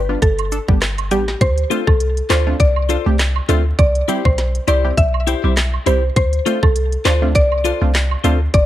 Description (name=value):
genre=dancehall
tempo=101 BPM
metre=4/4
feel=swing 56% on 16ths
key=D dorian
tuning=A4 = 440 Hz
part: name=mallet-like synth pluck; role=melody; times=0.0-8.7 s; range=G4 to E5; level=-20 LUFS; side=equal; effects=chorus, tape echo
part: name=clean 808-style bass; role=bass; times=0.0-8.7 s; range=G1 to D2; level=-18 LUFS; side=equal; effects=none
part: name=punchy chord stab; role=accompaniment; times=0.1-8.4 s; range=G3 to A4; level=-22 LUFS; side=right 2 dB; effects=chorus
part: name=island pop drum kit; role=drums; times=0.2-8.7 s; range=handclaps, hi-hat, kick drum, rim click, snare drum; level=-16 LUFS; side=equal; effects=none
part: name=woodblock and cabasa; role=percussion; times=0.4-8.7 s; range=none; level=-29 LUFS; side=right 13 dB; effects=none
part: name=clean electric guitar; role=arpeggios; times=1.7-8.4 s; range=E4 to C5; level=-23 LUFS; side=left 12 dB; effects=none
room=light reverb, digital ambience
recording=vinyl crackle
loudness=-14 LUFS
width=side -13 dB against mid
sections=0.0-8.7 A section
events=none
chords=0.0 G; 1.4 Dm7; 3.8 C; 6.2 Dm7